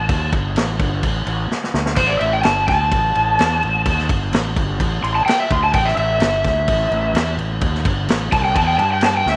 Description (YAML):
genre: blues rock power trio and southern rock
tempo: 128 BPM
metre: 4/4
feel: straight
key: unclear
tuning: A4 = 436 Hz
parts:
  - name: overdriven slide guitar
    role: melody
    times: 0.0-9.4 s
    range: C5 to C6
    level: -20 LUFS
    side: equal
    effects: none
  - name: fuzz fingered electric bass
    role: bass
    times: 0.0-9.4 s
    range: G1 to G2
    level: -24 LUFS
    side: equal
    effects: overdrive
  - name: vintage drum kit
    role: drums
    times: 0.1-9.4 s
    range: crash cymbal, kick drum, snare drum, splash cymbal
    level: -23 LUFS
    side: equal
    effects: none
room: light reverb, studio reverb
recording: none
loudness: -18 LUFS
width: mono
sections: 0.0-9.4 A section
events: electric slide guitar solo 0.0-9.4; drum fill 1.5-2.0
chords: 0.0 N.C.; 8.8 Gsus2